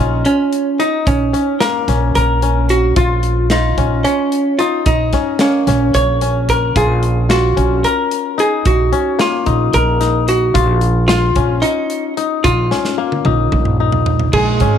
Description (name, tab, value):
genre	progressive instrumental, band music in an uneven meter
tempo	221 BPM (eighths)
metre	7/8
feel	straight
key	Bb minor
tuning	A4 = 444 Hz
part	archtop guitar, miked and amplified	melody	0.0-14.8 s	Db4 to Db5	-16 LUFS	right 1 dB	none
part	kora	arpeggios	0.0-14.8 s	Bb3 to F4	-19 LUFS	left 9 dB	none
part	upright bass	bass	0.0-14.8 s	Ab1 to Bb1	-16 LUFS	right 1 dB	none
part	modern studio drum kit	drums	0.3-14.7 s	crash cymbal, hi-hat, kick drum, snare drum, toms	-21 LUFS	right 1 dB	none
part	growling alto saxophone	second line	14.3-14.8 s	Ab3	-19 LUFS	right 15 dB	none
room	light reverb, small room ambience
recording	1960s-style stereo with parts hard left and right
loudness	-12 LUFS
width	side -8 dB against mid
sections	0.0-14.3 A section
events	drum fill 12.7-14.3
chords	0.0 Bbm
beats	0.25 0.52 0.79 | 1.06 1.33 1.60 1.88 2.15 2.42 2.69 | 2.96 3.23 3.51 3.78 4.05 4.32 4.59 | 4.86 5.13 5.41 5.68 5.95 6.22 6.49 | 6.76 7.03 7.30 7.58 7.85 8.12 8.39 | 8.66 8.93 9.20 9.47 9.74 10.01 10.28 | 10.55 10.82 11.10 11.37 11.64 11.91 12.18 | 12.45 12.72 12.99 13.26 13.53 13.80 14.07 | 14.34 14.61